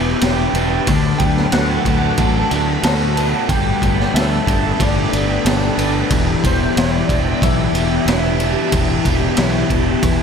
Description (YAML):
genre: rock, shoegaze and dream pop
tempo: 92 BPM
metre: 4/4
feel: straight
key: E minor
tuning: A4 = 440 Hz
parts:
  - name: string machine, full ensemble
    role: sustained chords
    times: 0.0-10.2 s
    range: G4 to D6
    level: -26 LUFS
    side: right 1 dB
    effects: phaser, ensemble chorus
  - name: crunchy overdriven guitar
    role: riff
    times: 0.0-10.2 s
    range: D3 to B4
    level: -21 LUFS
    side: left 9 dB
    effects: ensemble chorus
  - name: raw garage guitar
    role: riff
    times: 0.0-10.2 s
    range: E2 to A4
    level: -22 LUFS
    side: right 8 dB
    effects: overdrive, reverse reverb
  - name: growling fingered electric bass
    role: bass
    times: 0.0-10.2 s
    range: E1 to D2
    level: -20 LUFS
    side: right 1 dB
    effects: overdrive
  - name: raw garage drum kit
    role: drums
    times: 0.2-10.2 s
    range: kick drum, ride cymbal, snare drum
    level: -19 LUFS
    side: equal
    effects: none
  - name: electric guitar through a small old amp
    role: melody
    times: 1.2-10.2 s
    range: C5 to A5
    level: -25 LUFS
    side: equal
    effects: analog chorus, analog delay
room: moderate plate reverb, RT60 3.5 s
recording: dreamy mix soaked in reverb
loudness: -14 LUFS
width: side -6 dB against mid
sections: 0.0-10.2 A section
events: none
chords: 0.0 Em7; 0.9 D6; 3.5 Gadd9; 6.1 Em7